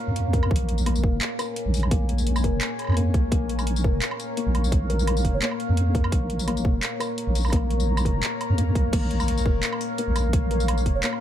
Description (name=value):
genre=half-time drum and bass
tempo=171 BPM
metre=4/4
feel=half-time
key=Bb minor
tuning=A4 = 440 Hz
part: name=deep dark ambient pad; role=sustained chords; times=0.0-11.2 s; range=Bb3 to Bb5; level=-30 LUFS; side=left 2 dB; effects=chorus, built-in reverb, sidechain pumping
part: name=felt-muted upright piano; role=arpeggios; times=0.0-11.2 s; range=Bb3 to Bb4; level=-31 LUFS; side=left 5 dB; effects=dub echo
part: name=deep soft wobble bass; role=bass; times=0.1-11.0 s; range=F1 to F2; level=-23 LUFS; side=right 1 dB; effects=chorus
part: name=drum and bass drum kit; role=drums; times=0.2-11.2 s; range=crash cymbal, handclaps, hi-hat, tambourine, woodblock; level=-30 LUFS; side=right 1 dB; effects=none
part: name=electronic kick drum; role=drums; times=0.3-10.9 s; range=none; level=-23 LUFS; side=equal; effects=none
part: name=mellow hollow concert flute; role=melody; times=5.3-5.5, 10.9-11.1 s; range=Db5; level=-36 LUFS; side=right 5 dB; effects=dub echo
room=digital ambience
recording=none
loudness=-21 LUFS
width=side -11 dB against mid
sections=0.0-11.2 A section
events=none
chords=0.0 Bbm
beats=0.16 | 0.51 0.86 1.21 1.56 | 1.91 2.26 2.61 2.96 | 3.32 3.67 4.02 4.37 | 4.72 5.07 5.42 5.77 | 6.12 6.47 6.82 7.17 | 7.53 7.88 8.23 8.58 | 8.93 9.28 9.63 9.98 | 10.33 10.68 11.04